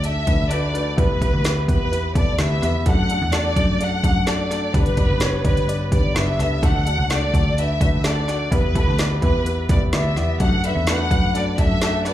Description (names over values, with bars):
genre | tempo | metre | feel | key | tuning
piano-driven pop | 127 BPM | 4/4 | straight | D major | A4 = 440 Hz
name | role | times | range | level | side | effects
rich studio violin section | melody | 0.0-12.1 s | B4 to F#5 | -24 LUFS | left 1 dB | plate reverb, slapback echo, tape echo
warm grand piano | accompaniment | 0.0-12.1 s | E3 to D5 | -26 LUFS | left 1 dB | plate reverb, slapback echo
vintage muted picked electric bass | bass | 0.0-12.1 s | F#1 to F#2 | -22 LUFS | equal | none
deep house drum kit | drums | 0.0-12.1 s | hi-hat, kick drum, snare drum | -21 LUFS | equal | none
room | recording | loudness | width
light reverb | live gig heard through the venue's PA, club reverb | -17 LUFS | side -12 dB against mid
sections
0.0-12.1 A section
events
none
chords
0.0 D; 1.0 Em; 2.9 D; 4.7 G; 6.6 D; 8.5 Em; 10.4 D